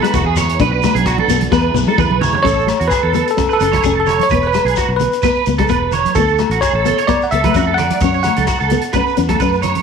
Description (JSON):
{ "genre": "highlife guitar band", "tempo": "129 BPM", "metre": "4/4", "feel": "straight", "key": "A major", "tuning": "A4 = 439 Hz", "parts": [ { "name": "nylon-string guitar", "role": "accompaniment", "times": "0.0-9.6 s", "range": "G#3 to D4", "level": "-20 LUFS", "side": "left 12 dB", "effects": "none" }, { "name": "tonewheel organ", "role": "sustained chords", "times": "0.0-2.4 s", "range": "B3 to G#4", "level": "-27 LUFS", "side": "right 2 dB", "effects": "slow rotary speaker" }, { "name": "electric guitar at the edge of break-up", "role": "arpeggios", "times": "0.0-9.8 s", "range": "F#4 to D5", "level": "-18 LUFS", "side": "right 11 dB", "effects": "ensemble chorus, slapback echo" }, { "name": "vintage drum kit", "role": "drums", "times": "0.0-9.8 s", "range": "hi-hat, kick drum, rim click, snare drum, toms", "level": "-23 LUFS", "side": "equal", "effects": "none" }, { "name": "agogo bells", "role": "percussion", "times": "0.0-9.8 s", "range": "none", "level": "-26 LUFS", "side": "left 13 dB", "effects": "none" }, { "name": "fingered electric bass", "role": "bass", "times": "0.1-9.8 s", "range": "E1 to F#2", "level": "-20 LUFS", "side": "equal", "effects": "none" }, { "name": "shekere", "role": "percussion", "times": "0.1-9.7 s", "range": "none", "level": "-28 LUFS", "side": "left 6 dB", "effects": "none" }, { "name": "congas", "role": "percussion", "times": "0.4-9.8 s", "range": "none", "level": "-24 LUFS", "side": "right 10 dB", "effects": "none" }, { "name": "barky tine electric piano", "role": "melody", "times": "2.4-9.6 s", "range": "A4 to F#5", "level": "-18 LUFS", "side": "left 1 dB", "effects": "fast stereo tremolo" } ], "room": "light reverb, studio reverb", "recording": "1960s-style stereo with parts hard left and right", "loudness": "-12 LUFS", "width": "side -6 dB against mid", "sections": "0.0-2.4 A section; 2.4-9.8 B section", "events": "drum fill 1.5-2.4", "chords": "0.0 E; 0.6 Bm; 1.5 E; 2.4 A; 4.3 E; 6.2 D5; 8.0 F#m", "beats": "0.14 | 0.60 1.06 1.52 1.99 | 2.45 2.91 3.38 3.84 | 4.30 4.77 5.23 5.70 | 6.16 6.62 7.09 7.55 | 8.02 8.48 8.94 9.41" }